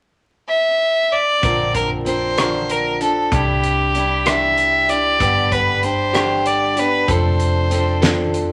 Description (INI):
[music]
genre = folk rock and heartland rock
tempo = 64 BPM (dotted quarters)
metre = 6/8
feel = straight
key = unclear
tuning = A4 = 441 Hz
[part]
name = rich fiddle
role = melody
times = 0.5-8.4 s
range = G4 to E5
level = -20 LUFS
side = equal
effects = none
[part]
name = picked steel-string acoustic guitar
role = accompaniment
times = 1.4-8.5 s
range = G2 to Bb4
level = -24 LUFS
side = equal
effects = none
[part]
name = hollow-body short-scale fingered electric bass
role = bass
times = 1.4-8.5 s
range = F1 to C2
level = -26 LUFS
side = equal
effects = none
[part]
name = loose indie drum kit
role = drums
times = 1.4-8.5 s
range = hi-hat, kick drum, rim click, snare drum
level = -25 LUFS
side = equal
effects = none
[sound]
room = moderate club reverb, RT60 0.6 s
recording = vinyl crackle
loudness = -17 LUFS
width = mono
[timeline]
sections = 0.0-1.4 A section; 1.4-8.5 B section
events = none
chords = 0.0 N.C.; 1.4 Bbadd9; 3.3 Cadd9; 5.2 G; 7.1 F6